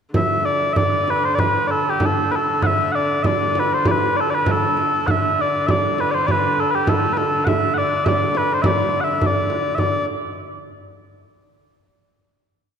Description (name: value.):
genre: medieval dance.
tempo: 96-107 BPM.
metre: 2/4.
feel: straight.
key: unclear.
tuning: A4 = 435 Hz.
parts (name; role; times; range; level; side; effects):
rich hurdy-gurdy; drone; 0.1-9.9 s; D3; -27 LUFS; right 2 dB; none.
frame drum; percussion; 0.1-10.0 s; none; -22 LUFS; right 1 dB; none.
mellow small bagpipes; melody; 0.2-10.1 s; G4 to F#5; -19 LUFS; left 1 dB; none.
room: wet concert hall reverb, RT60 2.5 s.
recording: none.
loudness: -17 LUFS.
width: side -7 dB against mid.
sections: 0.1-9.8 A section; 9.8-10.9 final note.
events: speeding up 0.1-10.9.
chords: none.